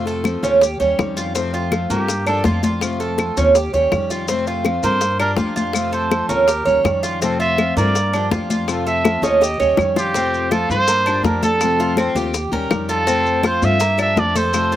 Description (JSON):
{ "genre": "latin, Cuban son and guajira", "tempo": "164 BPM", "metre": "4/4", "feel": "straight", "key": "F major", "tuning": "A4 = 440 Hz", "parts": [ { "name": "picked steel-string acoustic guitar", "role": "accompaniment", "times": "0.0-14.8 s", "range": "C3 to G4", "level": "-25 LUFS", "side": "left 6 dB", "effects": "slapback echo" }, { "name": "Cuban tres", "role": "arpeggios", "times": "0.0-14.8 s", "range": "Bb3 to Db5", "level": "-20 LUFS", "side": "right 3 dB", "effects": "slapback echo" }, { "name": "upright bass", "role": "bass", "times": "0.0-14.8 s", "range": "Eb2 to G2", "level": "-24 LUFS", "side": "equal", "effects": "none" }, { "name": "bongos", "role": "percussion", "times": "0.1-14.8 s", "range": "none", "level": "-23 LUFS", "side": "left 6 dB", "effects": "none" }, { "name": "congas", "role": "percussion", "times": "0.1-14.8 s", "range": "none", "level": "-25 LUFS", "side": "left 2 dB", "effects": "slapback echo" }, { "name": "maracas", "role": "percussion", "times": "0.1-14.8 s", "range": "none", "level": "-30 LUFS", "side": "left 5 dB", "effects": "none" }, { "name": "claves", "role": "percussion", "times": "0.3-14.7 s", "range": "none", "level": "-28 LUFS", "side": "left 5 dB", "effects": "none" }, { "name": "warm trumpet", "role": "melody", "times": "1.9-2.4, 4.8-14.8 s", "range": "F4 to E5", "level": "-20 LUFS", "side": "right 2 dB", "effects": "slapback echo" } ], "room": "little or no reverb", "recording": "recorded outdoors, with no room sound", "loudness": "-15 LUFS", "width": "side -12 dB against mid", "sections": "0.0-10.1 A section; 10.1-14.8 B section", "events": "trumpet solo 0.0-10.1; drum fill 9.1-10.1", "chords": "0.0 F; 0.6 Eb7; 1.4 F; 2.1 Gm7; 2.8 F; 3.6 Eb7; 4.3 F; 5.0 Gm7; 5.8 F; 6.5 Eb7; 7.2 F; 8.0 Gm7; 8.7 F; 9.4 Eb7; 10.1 F; 10.9 Gm7; 11.6 F; 12.3 Eb7; 13.1 F; 13.8 Gm7" }